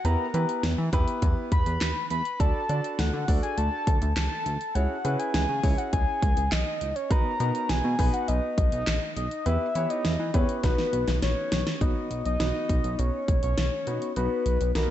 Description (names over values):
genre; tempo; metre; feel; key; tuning
synth-pop; 102 BPM; 4/4; straight; B major; A4 = 439 Hz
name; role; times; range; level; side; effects
soft octave-layered synth lead; melody; 0.0-14.9 s; A#4 to B5; -30 LUFS; left 2 dB; chorus, ping-pong delay
warm concert grand piano; accompaniment; 0.0-14.9 s; B3 to D5; -32 LUFS; equal; none
chorused synth bass; bass; 0.0-14.9 s; A#1 to E3; -27 LUFS; equal; none
pop drum kit; drums; 0.0-14.9 s; handclaps, hi-hat, kick drum, snare drum; -27 LUFS; equal; gated reverb
room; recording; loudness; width
light reverb, digital ambience; nothing above 8.0 kHz; -24 LUFS; side -12 dB against mid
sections
0.0-11.8 A section; 11.8-14.9 B section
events
drum fill 10.6-11.8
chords
0.0 Em; 2.4 D; 4.8 C#m; 7.1 B; 9.5 Em; 10.6 B